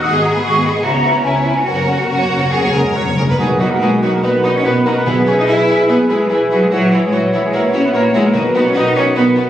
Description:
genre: classical, dramatic, fast romantic movement for symphony orchestra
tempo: 136-152 BPM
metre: 4/4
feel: rubato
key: B major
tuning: A4 = 441 Hz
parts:
  - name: warm symphonic violin section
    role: melody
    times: 0.0-9.4 s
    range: A#4 to F#5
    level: -25 LUFS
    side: left 2 dB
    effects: none
  - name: mellow large flute ensemble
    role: second line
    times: 0.0-9.5 s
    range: F#5 to D#6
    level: -22 LUFS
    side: equal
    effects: none
  - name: rich symphonic violin section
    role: second line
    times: 0.0-9.4 s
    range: C#4 to C#5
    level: -23 LUFS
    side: left 1 dB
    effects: none
  - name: warm symphonic viola section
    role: accompaniment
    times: 0.0-9.4 s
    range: G#3 to E4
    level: -24 LUFS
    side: equal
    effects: none
  - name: rich symphonic cello section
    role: bass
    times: 0.0-9.4 s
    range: E3 to G#4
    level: -17 LUFS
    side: right 1 dB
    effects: none
  - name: warm studio double bass section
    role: bass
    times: 0.0-9.5 s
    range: F#1 to C#2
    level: -23 LUFS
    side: right 1 dB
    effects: none
  - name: timpani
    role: percussion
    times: 1.7-5.6, 8.3-8.9 s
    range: F#2 to B2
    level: -22 LUFS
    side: left 1 dB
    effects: none
  - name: warm trumpet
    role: stabs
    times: 2.7-9.3 s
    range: E4 to E5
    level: -22 LUFS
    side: equal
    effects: none
  - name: warm clarinet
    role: second line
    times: 3.4-9.5 s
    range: B4 to C#5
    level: -23 LUFS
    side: equal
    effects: none
  - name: mellow bassoon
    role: accompaniment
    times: 3.4-9.5 s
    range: D#3 to E3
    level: -21 LUFS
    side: equal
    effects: none
  - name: mellow French horn section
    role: sustained chords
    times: 3.4-9.5 s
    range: D#4 to C#5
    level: -19 LUFS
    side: equal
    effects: none
room: wet scoring stage reverb, RT60 1.7 s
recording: recorded on a phone in the room, studio reverb, compression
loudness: -12 LUFS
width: side -11 dB against mid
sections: 0.0-3.4 A section; 3.4-9.5 B section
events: timpani fill 1.7-3.4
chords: 0.0 G#m7; 0.8 C#m7; 1.7 F#; 3.4 B; 5.1 E/B; 6.7 F#7/A#; 8.3 B

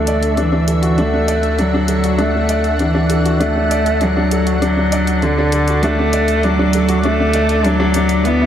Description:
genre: piano and strings electronica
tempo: 99 BPM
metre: 4/4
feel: straight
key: D major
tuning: A4 = 441 Hz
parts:
  - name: rich cello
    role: melody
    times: 0.0-8.5 s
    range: D3 to B3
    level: -16 LUFS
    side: equal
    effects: low-pass filter
  - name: lush unison pad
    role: sustained chords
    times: 0.0-8.5 s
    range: D3 to C#6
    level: -24 LUFS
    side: left 1 dB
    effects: chorus
  - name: felt-muted upright piano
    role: riff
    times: 0.0-8.5 s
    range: D4 to D5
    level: -20 LUFS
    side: left 1 dB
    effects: digital delay
  - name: warm sub bass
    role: bass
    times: 0.0-8.5 s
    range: D2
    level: -20 LUFS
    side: equal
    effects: none
  - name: electronic hi-hat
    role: drums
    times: 0.1-8.4 s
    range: none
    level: -27 LUFS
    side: left 1 dB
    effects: none
room: moderate concert hall reverb, RT60 2.2 s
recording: none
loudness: -13 LUFS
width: side -10 dB against mid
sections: 0.0-8.5 A section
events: build-up 0.0-8.5; filter sweep on cello 0.0-8.5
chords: 0.0 Dadd9

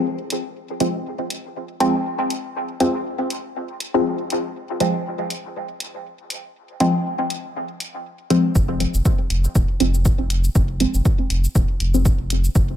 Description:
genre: dub techno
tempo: 120 BPM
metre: 4/4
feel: swing 56% on 16ths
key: F minor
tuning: A4 = 440 Hz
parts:
  - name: filtered dub chord stab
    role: stabs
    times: 0.0-12.0 s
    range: F3 to C4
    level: -22 LUFS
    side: equal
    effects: phaser, sidechain pumping, dub echo
  - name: electronic hi-hat and cabasa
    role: drums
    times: 0.3-12.7 s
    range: none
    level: -29 LUFS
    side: equal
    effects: none
  - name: warm sub bass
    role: bass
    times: 8.6-12.8 s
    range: Eb1 to F1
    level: -20 LUFS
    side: equal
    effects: sidechain pumping
  - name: electronic kick drum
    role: drums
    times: 8.6-12.7 s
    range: none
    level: -18 LUFS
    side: equal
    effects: none
room: moderate echo chamber reverb, RT60 1.7 s, digital ambience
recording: echo-heavy mix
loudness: -19 LUFS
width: side -11 dB against mid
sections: 0.0-8.6 A section; 8.6-12.8 B section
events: filter sweep on synth stab 8.6-12.8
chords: 0.0 Fm; 8.6 N.C.

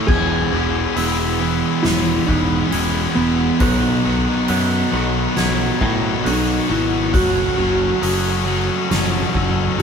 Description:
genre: post-rock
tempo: 68 BPM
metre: 4/4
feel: straight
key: E major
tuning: A4 = 438 Hz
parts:
  - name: warm studio string section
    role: sustained chords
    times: 0.0-9.8 s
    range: D#4 to B5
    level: -35 LUFS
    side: left 2 dB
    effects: none
  - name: glockenspiel with rubber mallets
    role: arpeggios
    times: 0.0-9.8 s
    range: D#6 to G#6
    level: -29 LUFS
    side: right 2 dB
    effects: none
  - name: sludgy distorted guitar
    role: riff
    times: 0.0-9.8 s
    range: E2 to B3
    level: -23 LUFS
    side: right 7 dB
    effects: overdrive
  - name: tight distorted guitar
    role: riff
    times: 0.0-9.8 s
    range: B2 to F#4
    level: -22 LUFS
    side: left 8 dB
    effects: distortion
  - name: clean lap steel guitar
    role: melody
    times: 0.1-9.8 s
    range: B3 to G#4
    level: -22 LUFS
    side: equal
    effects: none
  - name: modern bright picked electric bass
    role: bass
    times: 0.1-9.8 s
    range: E1 to A2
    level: -23 LUFS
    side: equal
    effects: none
  - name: soft-mallet drum kit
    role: drums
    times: 0.1-9.8 s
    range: crash cymbal, hi-hat, kick drum, snare drum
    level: -23 LUFS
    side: equal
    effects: none
room: moderate studio ambience, RT60 0.5 s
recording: band playing live in one room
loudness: -16 LUFS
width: side -6 dB against mid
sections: 0.0-9.8 A section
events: none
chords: 0.1 E; 3.6 B; 7.1 F#m

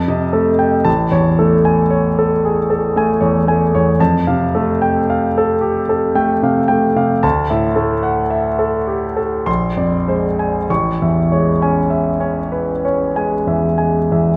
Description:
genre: classical, impressionist solo piano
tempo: 47-59 BPM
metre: 3/4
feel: rubato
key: unclear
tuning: A4 = 441 Hz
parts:
  - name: clear concert grand piano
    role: solo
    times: 0.0-14.4 s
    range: A1 to C#6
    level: -16 LUFS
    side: equal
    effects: none
room: wet scoring stage reverb, RT60 1.8 s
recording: none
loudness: -16 LUFS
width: mono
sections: 0.0-14.4 A section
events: none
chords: 0.0 F9; 0.9 Amaj7; 4.0 Fadd9; 7.2 Dadd9; 9.5 Bb9; 10.7 Amaj7

